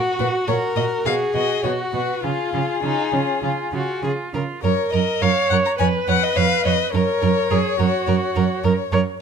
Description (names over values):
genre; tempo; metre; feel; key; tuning
quick classical-period movement for string quartet; 104 BPM; 4/4; rubato; F# major; A4 = 441 Hz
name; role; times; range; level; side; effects
warm violin; second line; 0.0-9.0 s; C#4 to C#5; -25 LUFS; left 2 dB; none
warm viola; accompaniment; 0.0-9.0 s; E#4 to C#5; -24 LUFS; right 3 dB; none
dark violin; melody; 0.2-8.9 s; G#4 to A#5; -23 LUFS; left 9 dB; none
warm cello; bass; 0.2-9.0 s; E#2 to C#3; -22 LUFS; right 7 dB; none
room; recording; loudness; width
light reverb; close, detailed microphones; -18 LUFS; side -6 dB against mid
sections
0.0-4.6 A section; 4.6-9.2 B section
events
none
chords
0.0 F#/A#; 1.1 G#m7/B; 2.2 C#; 4.6 F#; 5.8 C#/E#; 6.9 F#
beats
0.48 1.05 1.64 | 2.23 2.83 3.43 4.03 | 4.64 5.22 5.80 6.37 | 6.95 7.51 8.08 8.64